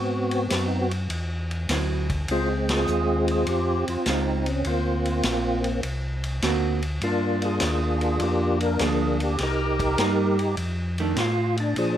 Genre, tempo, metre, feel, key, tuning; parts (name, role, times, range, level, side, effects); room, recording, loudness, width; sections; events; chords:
soul jazz organ trio; 101 BPM; 4/4; swing 69% on 8ths; A4 = 440 Hz
percussive tonewheel organ; melody; 0.0-12.0 s; F3 to Bb4; -24 LUFS; equal; slow rotary speaker, overdrive, chorus vibrato, plate reverb
mellow tonewheel organ; bass; 0.0-12.0 s; A#1 to Bb2; -27 LUFS; equal; slow rotary speaker
vintage drum kit; drums; 0.3-12.0 s; hi-hat, kick drum, ride cymbal, snare drum; -30 LUFS; equal
vintage hollow-body jazz guitar; accompaniment; 1.7-11.2 s; D3 to F#4; -27 LUFS; right 5 dB
light reverb; -22 LUFS; side -10 dB against mid
0.0-12.0 A section
band accent 2.6
0.0 Ab7alt; 2.3 Dbmaj7; 4.7 D7alt; 7.0 Gm7; 9.4 Cm7; 10.6 F6